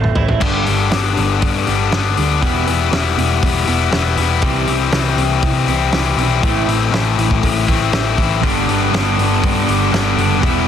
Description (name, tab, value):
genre	quiet-loud alternative rock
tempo	120 BPM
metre	4/4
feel	straight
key	G major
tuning	A4 = 440 Hz
part	electric guitar at the edge of break-up	arpeggios	0.0-8.4 s	E2 to E4	-24 LUFS	right 8 dB	analog chorus
part	hollow-body short-scale picked electric bass	bass	0.0-10.7 s	E1 to C3	-19 LUFS	equal	none
part	loose indie drum kit	drums	0.0-10.5 s	crash cymbal, hi-hat, kick drum, snare drum, toms	-20 LUFS	equal	none
part	distorted electric guitar	riff	0.4-10.7 s	G2 to E4	-17 LUFS	left 10 dB	overdrive
part	thick fuzz guitar	riff	8.4-10.7 s	G2 to E4	-19 LUFS	right 16 dB	distortion
room	little or no reverb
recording	dense, heavily limited modern master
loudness	-13 LUFS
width	side -9 dB against mid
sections	0.4-10.7 A section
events	drum fill 0.0-0.4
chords	0.4 G; 2.4 Em; 4.4 C; 6.4 Am; 8.4 G